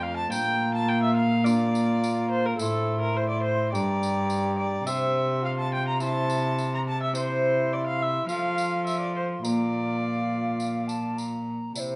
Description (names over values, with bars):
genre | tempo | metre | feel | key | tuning
classical, renaissance-style consort dance | 105 BPM | 4/4 | straight | unclear | A4 = 440 Hz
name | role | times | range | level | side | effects
mellow hollow alto recorder | melody | 0.0-12.0 s | C5 to C6 | -38 LUFS | equal | none
warm viola | second line | 0.0-12.0 s | G4 to Bb5 | -31 LUFS | equal | none
Celtic harp | accompaniment | 0.0-12.0 s | F2 to C5 | -36 LUFS | equal | none
mellow bassoon | accompaniment | 0.0-12.0 s | E4 to G4 | -35 LUFS | equal | none
rich cello | bass | 0.0-12.0 s | F2 to F3 | -30 LUFS | equal | none
tambourine | percussion | 0.3-12.0 s | none | -43 LUFS | equal | none
room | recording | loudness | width
moderate large studio reverb, RT60 1.2 s | nothing above 10.7 kHz | -26 LUFS | mono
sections
0.0-11.7 A section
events
none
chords
0.3 Bb; 2.6 Am; 3.7 Gm; 4.9 C; 6.0 Am/C; 8.3 F; 9.4 Bb